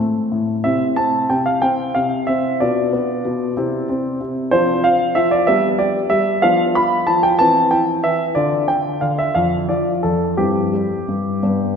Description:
classical-period piano sonatina; 62 BPM (dotted quarters); 6/8; rubato; C major from 4.5 s; A4 = 440 Hz
warm grand piano; solo; 0.0-11.8 s; F2 to B5; -15 LUFS; equal
wet concert hall reverb, RT60 2.2 s; minimal, uncompressed stereo recording; -15 LUFS; side -6 dB against mid
0.0-11.8 A section
0.0 Am; 0.7 C; 2.6 Bdim; 3.6 C; 4.5 Dm7/F; 5.5 G; 6.4 G9/F; 7.4 C/E; 8.4 Dm; 9.4 Dm/F; 10.4 C/G

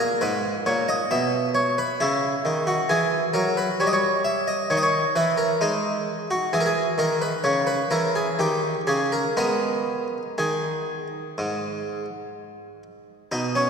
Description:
classical, baroque-style suite movement for harpsichord; 60-68 BPM; 4/4; rubato; G# minor; A4 = 441 Hz
harpsichord; solo; 0.0-13.7 s; G#2 to E5; -21 LUFS; equal
wet church reverb, RT60 3.2 s; -21 LUFS; side -6 dB against mid
0.0-13.3 A section
0.2 G#madd9; 2.0 C#m11; 3.8 D#/G; 5.6 G#5; 7.4 C#m7; 8.4 D#7; 9.4 G#m

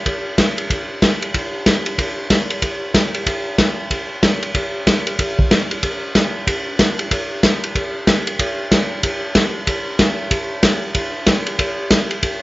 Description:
country; 187 BPM; 4/4; swing 62% on 8ths
vintage drum kit; drums; 0.1-12.3 s; hi-hat, kick drum, ride cymbal, snare drum; -16 LUFS; equal
moderate club reverb, RT60 0.8 s; nothing above 7.6 kHz; -16 LUFS; side -19 dB against mid
0.1-10.3 A section; 10.3-12.4 B section

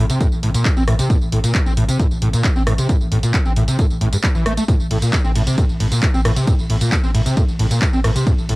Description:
driving peak-time techno; 134 BPM; 4/4; straight; A phrygian; A4 = 441 Hz
screaming distorted acid line; riff; 0.0-8.6 s; G2 to C4; -18 LUFS; equal; distortion, ensemble chorus, sidechain pumping, analog delay
saturated sub bass; bass; 0.0-8.6 s; A1; -23 LUFS; equal; overdrive, sidechain pumping, low-pass filter
techno drum kit; drums; 0.1-8.6 s; handclaps, hi-hat, ride cymbal, rim click, tambourine; -25 LUFS; equal; sidechain pumping on hats, cassette tape, sidechain pumping on perc, sidechain pumping on cymbals
electronic kick drum; drums; 0.2-8.4 s; -18 LUFS; equal; cassette tape
light reverb; home recording on cassette; -15 LUFS; side -21 dB against mid
0.0-8.6 A section
0.0 A5

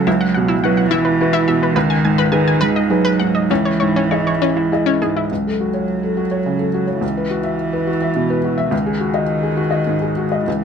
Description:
neoclassical piano and strings; 98-107 BPM; 3/4; rubato; C# minor; A4 = 439 Hz
warm cello; second line; 0.0-10.6 s; D#3 to G#3; -19 LUFS; right 4 dB
felt-muted upright piano; accompaniment; 0.0-10.6 s; C#2 to E5; -18 LUFS; left 1 dB
analog pluck; arpeggios; 0.1-5.2 s; C#4 to G#5; -21 LUFS; left 4 dB; chorus, slapback echo
light reverb; -15 LUFS; side -7 dB against mid
0.0-5.3 A section; 5.3-10.6 B section
0.1 Esus2/C#; 1.8 B6/C#; 3.5 C#madd9; 5.3 F#m/C#; 7.0 Esus2/C#; 8.7 C#sus24

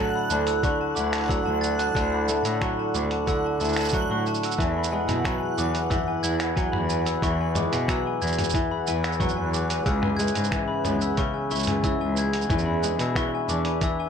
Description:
folktronica; 91 BPM; 4/4; straight; A4 = 438 Hz
glockenspiel with soft plastic mallets; second line; 0.0-14.1 s; G#5 to A6; -30 LUFS; left 5 dB; digital delay, plate reverb
warbly tape-like pad; sustained chords; 0.0-14.1 s; C#4 to F#5; -29 LUFS; right 2 dB; chorus, built-in reverb
kora; arpeggios; 0.0-14.1 s; C#3 to E4; -30 LUFS; left 1 dB; tape echo, plate reverb
backwards swelling texture; texture; 0.0-14.1 s; F#5 to F#6; -34 LUFS; equal; built-in reverb, plate reverb
rich cello; bass; 0.3-13.6 s; C#2 to B2; -29 LUFS; equal; tube saturation
lo-fi sampler-style drum kit; drums; 0.3-13.9 s; cabasa, finger snaps, hi-hat, toms; -31 LUFS; right 2 dB
electronic kick drum; drums; 0.6-13.9 s; -28 LUFS; equal
moderate studio reverb, RT60 0.5 s; -22 LUFS; side -7 dB against mid
0.0-14.1 A section
0.0 Dadd9; 4.6 Eadd9; 9.9 C#m7; 12.5 E7

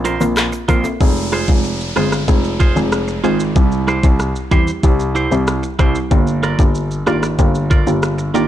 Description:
dancehall; 94 BPM; 4/4; straight; F dorian; A4 = 440 Hz
clean electric guitar; arpeggios; 0.0-8.5 s; E4 to D5; -22 LUFS; right 5 dB
warm grand piano; bass; 0.0-8.5 s; F1 to E2; -20 LUFS; equal
pop drum kit; drums; 0.0-8.5 s; handclaps, hi-hat, kick drum, rim click, shaker; -16 LUFS; equal; vintage 12-bit sampler grit
timbales and egg shaker; percussion; 0.1-1.0 s; -31 LUFS; left 8 dB
soft round pluck; accompaniment; 0.2-8.5 s; G3 to Bb4; -19 LUFS; equal; chorus
downlifter; sound effects; 1.0-6.1 s; -30 LUFS; equal
little or no reverb; dark, warm production; -13 LUFS; side -12 dB against mid
0.0-1.0 A section; 1.0-8.5 B section
0.0 Bbsus2; 1.0 Fm; 3.6 C; 6.1 Gm7

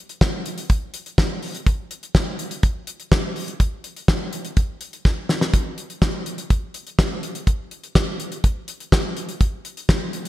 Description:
pop; 124 BPM; 4/4; straight
damped 70s drum kit; drums; 0.1-10.3 s; hi-hat, kick drum, snare drum; -19 LUFS; equal; gated reverb
light reverb; bright 1980s-style digital production; -20 LUFS; side -15 dB against mid
0.0-5.5 A section; 5.5-9.4 B section
drum fill 5.1-5.5

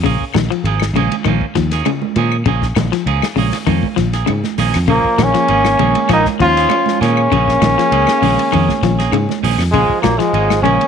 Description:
afrobeat; 99 BPM; 4/4; swing 53% on 16ths; Bb minor; A4 = 440 Hz
electric guitar at the edge of break-up; arpeggios; 0.0-10.8 s; Db3 to F3; -20 LUFS; left 12 dB
clean electric guitar; stabs; 0.0-10.8 s; F3 to Ab4; -23 LUFS; right 14 dB
fingered electric bass; bass; 0.0-10.8 s; Ab1 to Bb2; -17 LUFS; equal
warm soul drum kit; drums; 0.0-10.9 s; hi-hat, kick drum, ride cymbal, snare drum; -23 LUFS; left 5 dB
claves; percussion; 0.3-10.6 s; -28 LUFS; left 14 dB
congas; percussion; 0.3-10.8 s; -22 LUFS; right 14 dB
bright trombone; melody; 4.9-10.9 s; Ab3 to F4; -14 LUFS; left 1 dB
breathy alto saxophone; second line; 4.9-10.9 s; F3 to Db4; -22 LUFS; right 14 dB
muted trombone section; second line; 4.9-10.9 s; Ab2 to F3; -27 LUFS; left 9 dB
light reverb, small room ambience; 1960s-style stereo with parts hard left and right; -12 LUFS; side -7 dB against mid
0.0-10.9 A section
0.0 Bbm7

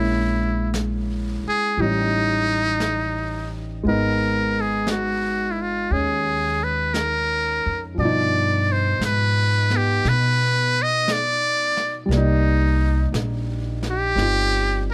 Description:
jazz ballad; 58 BPM; 4/4; swing 69% on 8ths; A4 = 441 Hz
trumpet with metal mute; melody; 0.0-14.9 s; D#4 to Eb5; -24 LUFS; equal
dark grand piano; accompaniment; 0.0-14.9 s; B2 to D5; -29 LUFS; equal
upright bass; bass; 0.0-14.9 s; G1 to B2; -26 LUFS; equal
jazz brush drum kit; drums; 0.7-14.9 s; brushed snare drum, hi-hat, snare drum; -35 LUFS; equal
little or no reverb; close, detailed microphones; -21 LUFS; mono
0.0-14.9 A section
0.0 Bbm7b5; 1.8 A7#11; 3.8 Abm; 8.0 G7b13; 12.1 Cm9

